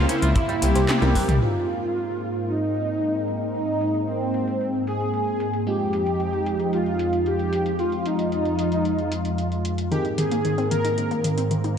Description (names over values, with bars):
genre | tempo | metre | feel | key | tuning
synthwave | 113 BPM | 4/4 | straight | unclear | A4 = 441 Hz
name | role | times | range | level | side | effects
soft supersaw | melody | 0.0-11.5 s | C4 to Bb4 | -25 LUFS | right 1 dB | cassette tape, digital delay, slapback echo
FM electric piano with soft pad layer | second line | 0.0-1.1 s | none | barely audible | none | none
lush unison pad | sustained chords | 0.0-11.8 s | F2 to C5 | -26 LUFS | equal | chorus, phaser, sidechain pumping
clean electric guitar | riff | 0.0-1.4 s | C3 to F4 | -32 LUFS | right 2 dB | lush chorus, ping-pong delay, slapback echo
FM electric piano with soft pad layer | stabs | 0.0-11.8 s | Ab3 to C5 | -34 LUFS | right 1 dB | chorus, ping-pong delay, slapback echo
dark detuned saw bass | bass | 0.0-1.4 s | C2 to Db2 | -21 LUFS | equal | none
80s electronic pad drums | drums | 0.1-11.7 s | handclaps, hi-hat, snare drum, toms | -29 LUFS | equal | gated reverb on snare and toms, overdrive, low-pass filter on hats, low-pass filter on snare, low-pass filter on toms, low-pass filter on room
kick drum | drums | 0.4-1.3 s | none | -24 LUFS | equal | none
wide unison pluck | arpeggios | 9.9-11.7 s | Eb3 to Eb4 | -26 LUFS | left 2 dB | cassette tape, ping-pong delay
room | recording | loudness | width
moderate lush hall reverb, RT60 2.7 s | big arena sound | -21 LUFS | side -8 dB against mid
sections
0.0-1.4 A section; 1.4-11.8 B section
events
drum fill 0.9-1.4; filter sweep on drum 1.4-11.8; filter sweep on analog synth pad 1.4-11.8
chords
0.4 C7; 1.4 Abadd9; 5.7 Fm7; 9.9 Abadd9